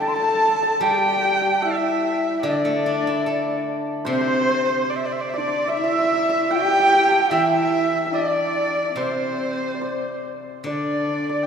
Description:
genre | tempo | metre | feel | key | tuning
chinese traditional, Chinese chamber ensemble | 73 BPM | 4/4 | rubato | D shang mode | A4 = 440 Hz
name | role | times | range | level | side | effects
rich erhu | melody | 0.0-11.5 s | C5 to A5 | -23 LUFS | right 2 dB | none
dark horsehead fiddle | second line | 0.0-11.5 s | C4 to A4 | -26 LUFS | equal | none
hammered dulcimer | second line | 0.0-11.5 s | C5 to A5 | -26 LUFS | right 2 dB | none
reedy large dizi | second line | 0.0-11.5 s | C5 to C6 | -25 LUFS | left 2 dB | none
steel-string zither | accompaniment | 0.0-11.5 s | C3 to A4 | -28 LUFS | left 2 dB | none
room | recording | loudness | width
wet church reverb, RT60 3.3 s | recorded in a church or concert hall | -18 LUFS | side -7 dB against mid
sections
0.0-11.5 A section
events
none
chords
none

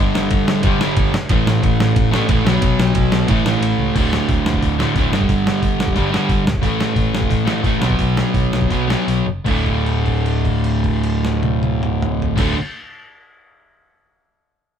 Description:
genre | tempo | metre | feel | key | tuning
punk rock | 152-182 BPM | 4/4 | straight | D major | A4 = 440 Hz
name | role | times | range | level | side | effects
crunchy overdriven guitar | riff | 0.0-12.6 s | D2 to B3 | -20 LUFS | right 6 dB | none
sludgy distorted guitar | riff | 0.0-12.6 s | D2 to B3 | -20 LUFS | left 7 dB | overdrive
picked electric bass | bass | 0.0-12.5 s | D1 to A2 | -22 LUFS | equal | none
boom bap sampler-style drum kit | drums | 0.2-12.5 s | crash cymbal, hi-hat, kick drum, ride cymbal, snare drum, toms | -20 LUFS | equal | none
room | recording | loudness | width
light reverb | band playing live in one room | -15 LUFS | side -8 dB against mid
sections
0.0-3.9 A section; 3.9-9.5 B section; 9.5-12.6 C section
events
kick and snare drop out 3.6-3.9, 9.1-9.5; slowing down 6.6-9.5; held note 9.5-12.4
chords
0.0 G5; 1.3 A5; 2.5 B5; 3.3 A; 3.9 D5; 5.1 G5; 6.6 A5; 7.8 B5; 9.5 D5

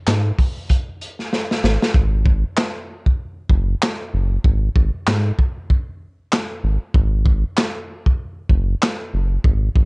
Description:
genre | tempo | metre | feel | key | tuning
hip hop, boom-bap hip-hop | 96 BPM | 4/4 | swing 59% on 16ths | unclear | A4 = 440 Hz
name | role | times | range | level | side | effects
round analog bass | bass | 0.1-9.9 s | F#1 to G#2 | -18 LUFS | equal | none
crunchy breakbeat drum kit | drums | 0.1-9.9 s | handclaps, hi-hat, kick drum, snare drum | -18 LUFS | equal | vintage 12-bit sampler grit
room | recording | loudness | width
little or no reverb | nothing above 10.8 kHz | -17 LUFS | side -35 dB against mid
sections
0.0-1.9 A section; 1.9-9.9 A section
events
drum fill 1.3-1.9; hi-hats muted 1.9-9.9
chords
none

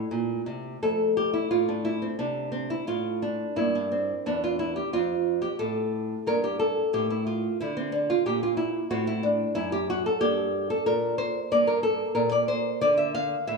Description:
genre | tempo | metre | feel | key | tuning
classical, baroque-style dance for nylon-string guitar | 90 BPM | 4/4 | rubato | F major | A4 = 440 Hz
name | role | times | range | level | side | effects
nylon-string guitar | solo | 0.0-13.6 s | E2 to F5 | -24 LUFS | equal | none
room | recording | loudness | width
moderate recital hall reverb, RT60 1.5 s | none | -24 LUFS | side -3 dB against mid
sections
0.8-13.6 A section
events
none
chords
0.0 N.C.; 0.8 F; 3.6 Em7b5; 4.9 F; 6.3 Gm; 8.9 F#m7b5; 10.2 Gm

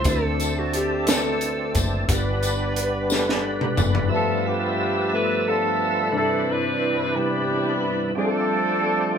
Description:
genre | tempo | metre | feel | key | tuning
slow gospel | 59 BPM (dotted quarters) | 6/8 | straight | unclear | A4 = 440 Hz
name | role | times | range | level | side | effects
raspy alto saxophone | melody | 0.0-3.8 s | F#4 to C5 | -28 LUFS | equal | none
mellow tine electric piano | accompaniment | 0.0-9.2 s | G2 to E5 | -27 LUFS | left 2 dB | slow stereo tremolo
overdriven tonewheel organ | sustained chords | 0.0-9.2 s | G2 to E5 | -26 LUFS | right 2 dB | slow rotary speaker, chorus vibrato
fingered electric bass | bass | 0.0-4.1 s | F#1 to D2 | -27 LUFS | equal | none
crisp fusion drum kit | drums | 0.0-4.1 s | hi-hat, kick drum, snare drum, toms | -25 LUFS | left 1 dB | none
tambourine | percussion | 0.1-4.1 s | none | -31 LUFS | left 4 dB | none
mellow saxophone section | melody | 4.1-9.2 s | B3 to B4 | -23 LUFS | equal | none
room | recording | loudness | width
moderate large studio reverb, RT60 1.3 s | band playing live in one room | -20 LUFS | side -7 dB against mid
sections
0.0-4.1 A section; 4.1-9.2 B section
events
drum fill 3.1-4.1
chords
0.1 D7; 2.1 G; 4.1 G13; 6.1 Cmaj9/G; 8.2 F69

